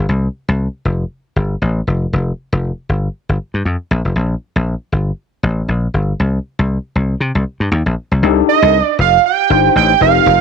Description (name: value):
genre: early-eighties boogie funk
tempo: 118 BPM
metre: 4/4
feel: swing 56% on 16ths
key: C dorian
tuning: A4 = 443 Hz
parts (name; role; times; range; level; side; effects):
- dry thumbed slap bass; bass; 0.0-10.4 s; F1 to C3; -15 LUFS; left 1 dB; tube saturation
- overdriven tine electric piano; accompaniment; 8.2-10.4 s; C4 to C5; -15 LUFS; left 16 dB; ensemble chorus
- fat analog lead; melody; 8.5-10.4 s; Eb5 to G5; -10 LUFS; right 14 dB; slapback echo
room: digital ambience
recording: 1960s-style stereo with parts hard left and right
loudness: -13 LUFS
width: side -6 dB against mid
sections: 0.0-8.2 A section; 8.2-10.4 B section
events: none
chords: 0.1 C5; 1.9 Fsus2; 3.9 Bb5; 6.2 N.C.; 8.2 Cm69